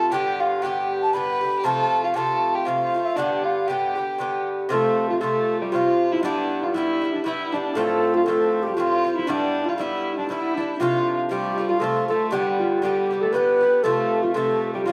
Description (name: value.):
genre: celtic folk, Celtic waltz.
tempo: 118 BPM.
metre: 3/4.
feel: swing 55% on 8ths.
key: unclear.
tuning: A4 = 438 Hz.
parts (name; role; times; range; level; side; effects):
mellow baroque flute; melody; 0.0-14.9 s; D4 to B5; -26 LUFS; equal; none.
dark fiddle; second line; 0.0-14.9 s; G3 to B4; -31 LUFS; equal; none.
Irish bouzouki; accompaniment; 0.0-14.9 s; G2 to G4; -27 LUFS; equal; none.
concert harp; second line; 4.7-14.9 s; D4 to B4; -31 LUFS; equal; none.
room: wet large studio reverb, RT60 0.9 s.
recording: band playing live in one room.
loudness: -22 LUFS.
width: mono.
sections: 0.0-4.7 A section; 4.7-14.9 A section.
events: none.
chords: 0.1 G; 1.6 F; 3.2 G; 4.7 F; 6.2 Em; 7.8 F; 9.3 Em; 10.8 F; 12.3 G; 13.8 F.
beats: | 0.12 0.63 1.14 | 1.65 2.16 2.67 | 3.18 3.69 4.20 | 4.71 5.21 5.72 | 6.23 6.74 7.25 | 7.76 8.27 8.78 | 9.28 9.79 10.30 | 10.80 11.31 11.82 | 12.32 12.83 13.34 | 13.85 14.35 14.86.